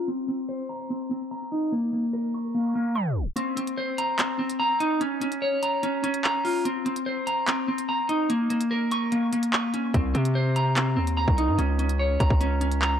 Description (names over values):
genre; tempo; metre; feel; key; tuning
hip hop, drill; 146 BPM; 4/4; half-time; C phrygian; A4 = 440 Hz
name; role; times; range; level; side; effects
clean electric guitar; arpeggios; 0.0-13.0 s; Bb3 to Db6; -24 LUFS; equal; analog delay
drill drum kit; drums; 3.4-12.9 s; handclaps, hi-hat, kick drum; -27 LUFS; equal; none
hard-hitting 808-style bass; bass; 9.9-13.0 s; C2 to C3; -24 LUFS; equal; none
room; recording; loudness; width
digital ambience; dry, gritty hardware recording, cassette tape, low-pass filter, tape stop; -23 LUFS; side -9 dB against mid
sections
0.0-3.4 A section; 3.4-13.0 B section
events
filter sweep 0.0-3.4; tape stop 3.0-3.4; kick muted 3.4-9.9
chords
0.1 Cm7; 1.7 Bbm; 3.4 Cm7; 5.0 Db6; 6.7 Cm7; 8.3 Bbm; 9.9 Cm7; 11.6 Db5